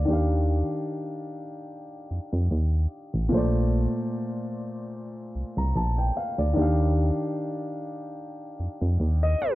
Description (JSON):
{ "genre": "contemporary R&B", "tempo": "74 BPM", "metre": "4/4", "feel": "swing 54% on 16ths", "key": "unclear", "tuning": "A4 = 440 Hz", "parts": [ { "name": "warm concert grand piano", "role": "accompaniment", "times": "0.0-9.6 s", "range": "Bb2 to Bb5", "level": "-28 LUFS", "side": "left 1 dB", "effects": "none" }, { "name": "solid FM bass", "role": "bass", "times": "0.0-9.4 s", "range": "A1 to F2", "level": "-23 LUFS", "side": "equal", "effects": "tube saturation" } ], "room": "small room ambience", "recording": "dry, gritty hardware recording, cassette tape, low-pass filter, tape stop", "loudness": "-24 LUFS", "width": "side -17 dB against mid", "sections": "0.0-9.6 A section", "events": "filter sweep 0.0-9.6", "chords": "0.1 Ebmaj9; 3.3 Bbmaj9; 6.6 Ebmaj9" }